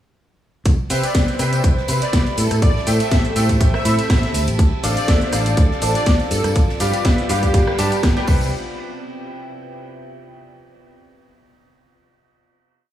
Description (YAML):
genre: piano house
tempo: 122 BPM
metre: 4/4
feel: swing 54% on 16ths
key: C major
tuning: A4 = 441 Hz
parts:
  - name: fingered electric bass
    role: bass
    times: 0.7-8.5 s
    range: G1 to C3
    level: -21 LUFS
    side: equal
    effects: sidechain pumping
  - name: electronic kick drum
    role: drums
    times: 0.7-8.4 s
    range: none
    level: -17 LUFS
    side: equal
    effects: overdrive
  - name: house drum kit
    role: drums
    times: 0.7-8.4 s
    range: crash cymbal, hi-hat, rim click, shaker, snare drum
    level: -25 LUFS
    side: equal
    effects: overdrive
  - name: soft-mallet drum kit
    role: drums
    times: 0.7-8.3 s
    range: hi-hat, ride cymbal, snare drum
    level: -36 LUFS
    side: right 2 dB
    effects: high-pass filter on cymbals, high-pass filter on hats, high-pass filter on snare, high-pass filter on room
  - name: tambourine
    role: percussion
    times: 0.7-8.5 s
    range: none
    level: -33 LUFS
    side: equal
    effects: none
  - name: deep dark ambient pad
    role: texture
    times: 1.7-10.5 s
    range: B3 to B5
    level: -30 LUFS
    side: equal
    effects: chorus, built-in reverb, sidechain pumping
  - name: clear concert grand piano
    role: riff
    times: 0.9-8.5 s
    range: G3 to B5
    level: -24 LUFS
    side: equal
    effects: ensemble chorus, sidechain pumping, diffuse ambient delay
  - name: airy dreamy lead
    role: melody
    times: 1.0-8.0 s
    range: G4 to E5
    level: -26 LUFS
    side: equal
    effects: chorus, diffuse ambient delay
room: light reverb, small room ambience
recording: none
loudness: -15 LUFS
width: side -12 dB against mid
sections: 0.7-8.5 drop; 8.5-10.5 final chord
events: drop 0.7-8.5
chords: 0.7 Cmaj7; 2.4 Am7; 4.3 Dm7; 6.3 G7; 8.3 Cmaj7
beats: | 0.66 1.15 1.64 2.13 | 2.62 3.11 3.61 4.10 | 4.59 5.08 5.57 6.07 | 6.56 7.05 7.54 8.03 | 8.52 9.02 9.51 10.00